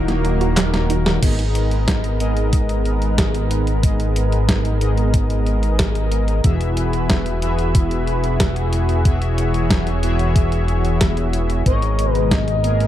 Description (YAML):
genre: synthwave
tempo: 92 BPM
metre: 4/4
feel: straight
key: G# minor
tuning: A4 = 443 Hz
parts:
  - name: expressive portamento lead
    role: melody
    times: 0.0-0.5, 11.7-12.9 s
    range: F#4 to D#5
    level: -24 LUFS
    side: left 3 dB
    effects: wide subtle chorus, digital delay
  - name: soft synth bell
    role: second line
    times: 0.0-0.5 s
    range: none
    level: barely audible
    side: none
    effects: none
  - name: lush unison pad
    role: sustained chords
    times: 0.0-12.9 s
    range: B2 to C#5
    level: -26 LUFS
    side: equal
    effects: chorus, sidechain pumping
  - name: analog synth brass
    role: stabs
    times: 0.0-12.9 s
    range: G#2 to E5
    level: -24 LUFS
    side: left 1 dB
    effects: chorus, digital delay
  - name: chorused synth bass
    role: bass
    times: 0.0-12.9 s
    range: D#1 to G#1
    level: -20 LUFS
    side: equal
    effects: sidechain pumping
  - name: analog pluck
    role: arpeggios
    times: 0.1-1.2 s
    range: F#3 to F#4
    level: -28 LUFS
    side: right 7 dB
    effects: chorus, vintage 12-bit sampler grit, digital delay
  - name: clean 12-bit digital drum machine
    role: drums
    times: 0.1-12.9 s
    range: crash cymbal, handclaps, hi-hat, snare drum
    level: -24 LUFS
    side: right 1 dB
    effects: none
  - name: electronic kick drum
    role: drums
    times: 1.2-12.4 s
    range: none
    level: -18 LUFS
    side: equal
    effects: none
room: little or no reverb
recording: dark, warm production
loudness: -16 LUFS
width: side -12 dB against mid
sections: 0.0-1.2 A section; 1.2-12.9 B section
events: drum fill 0.7-1.2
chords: 0.0 D#m; 1.2 G#madd9; 6.4 Eadd9; 11.7 G#madd9